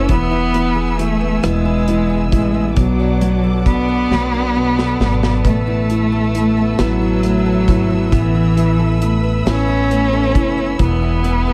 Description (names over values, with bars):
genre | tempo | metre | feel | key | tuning
six-eight pop ballad | 45 BPM (dotted quarters) | 6/8 | straight | unclear | A4 = 440 Hz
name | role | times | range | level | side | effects
warm cello | melody | 0.0-11.5 s | E3 to C#4 | -20 LUFS | equal | none
felt-muted upright piano | accompaniment | 0.0-11.5 s | B2 to E4 | -24 LUFS | equal | none
warm symphonic string section | sustained chords | 0.0-11.5 s | B4 to E6 | -30 LUFS | equal | none
fingerpicked steel-string acoustic guitar | arpeggios | 0.0-11.5 s | F#3 to A4 | -28 LUFS | equal | delay
upright bass | bass | 0.0-11.5 s | E1 to B1 | -22 LUFS | equal | none
modern studio drum kit | drums | 0.1-11.4 s | hi-hat, kick drum, rim click, snare drum | -22 LUFS | equal | none
room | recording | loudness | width
studio reverb | none | -16 LUFS | mono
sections
0.0-11.5 A section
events
drum fill 4.1-5.4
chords
0.1 E; 2.8 Bm7; 5.4 Asus2; 10.8 E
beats
| 0.09 1.43 | 2.77 4.11 | 5.45 6.78 | 8.12 9.46 | 10.79